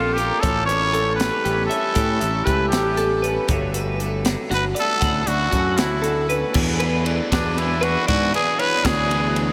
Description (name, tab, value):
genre	math rock and midwest emo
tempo	78 BPM (dotted quarters)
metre	6/8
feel	straight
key	unclear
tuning	A4 = 440 Hz
part	growling trumpet	melody	0.0-9.4 s	D4 to C#5	-25 LUFS	equal	none
part	electric guitar through a small old amp	accompaniment	0.0-9.5 s	D2 to F#4	-32 LUFS	equal	vibrato effect
part	twelve-string electric guitar	arpeggios	0.0-9.5 s	F#4 to G5	-27 LUFS	equal	lush chorus
part	growling fingered electric bass	bass	0.0-9.5 s	G1 to A2	-27 LUFS	equal	overdrive
part	crisp fusion drum kit	drums	0.2-9.5 s	crash cymbal, hi-hat, kick drum, ride cymbal, snare drum	-28 LUFS	equal	none
part	overdriven semi-hollow guitar	riff	6.5-9.5 s	E3 to G#4	-30 LUFS	equal	none
room	wet huge ambient reverb, RT60 6.9 s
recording	dreamy mix soaked in reverb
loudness	-20 LUFS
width	mono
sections	0.0-6.6 A section; 6.6-9.5 B section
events	none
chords	0.4 A9; 3.5 Gmaj9; 5.0 Dmaj9; 6.6 E9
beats	| 0.43 1.20 | 1.96 2.73 | 3.50 4.26 | 5.03 5.79 | 6.55 7.32 | 8.08 8.84